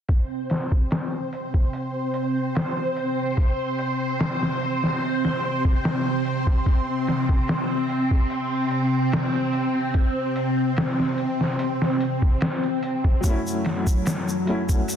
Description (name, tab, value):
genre	trip hop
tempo	73 BPM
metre	4/4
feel	straight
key	unclear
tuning	A4 = 440 Hz
part	string machine, cellos	sustained chords	0.1-15.0 s	F#3 to C5	-24 LUFS	equal	phaser, ensemble chorus, vintage 12-bit sampler grit
part	trip hop sampler-style drum kit	drums	0.1-15.0 s	hi-hat, kick drum, snare drum	-23 LUFS	equal	low-pass filter on hats, studio ambience, low-pass filter on kick, low-pass filter on snare
part	dark upright piano	accompaniment	13.2-15.0 s	F#3 to E4	-26 LUFS	left 1 dB	tremolo, tape echo
part	tube shaker	percussion	13.2-15.0 s	none	-35 LUFS	left 1 dB	none
room	light reverb, small room ambience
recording	dense, heavily limited modern master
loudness	-21 LUFS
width	side -9 dB against mid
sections	0.1-15.0 A section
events	none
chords	0.1 N.C.; 13.2 F#m7